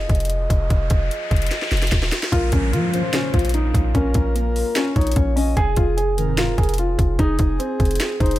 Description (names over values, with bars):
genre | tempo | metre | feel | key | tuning
hip hop, trap | 148 BPM | 4/4 | half-time | Bb minor | A4 = 441 Hz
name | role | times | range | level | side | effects
mellow French horn section | sustained chords | 0.0-8.4 s | F3 to Eb5 | -30 LUFS | right 2 dB | stereo widening
warm 808-style bass | bass | 0.0-8.4 s | Eb1 to F3 | -21 LUFS | equal | none
riser and downlifter | sound effects | 0.0-5.6 s | none | -30 LUFS | left 1 dB | none
trap drum kit | drums | 0.1-8.4 s | hi-hat, kick drum, snare drum | -21 LUFS | equal | none
dark concert grand piano | melody | 2.3-8.4 s | Bb3 to Ab4 | -24 LUFS | equal | none
breathy flute-like synth lead | second line | 2.3-8.4 s | Ab4 to Eb5 | -28 LUFS | left 3 dB | chorus, digital delay
mellow synth brass | stabs | 2.9-3.2, 6.2-6.5 s | Ab2 to F3 | -26 LUFS | right 2 dB | chorus
room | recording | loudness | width
digital ambience | none | -17 LUFS | side -15 dB against mid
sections
0.0-2.3 A section; 2.3-8.4 B section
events
break 0.0-2.3; riser 0.0-2.3; drum fill 1.5-2.3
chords
0.0 Fm7; 2.3 Bbm; 5.6 Fm7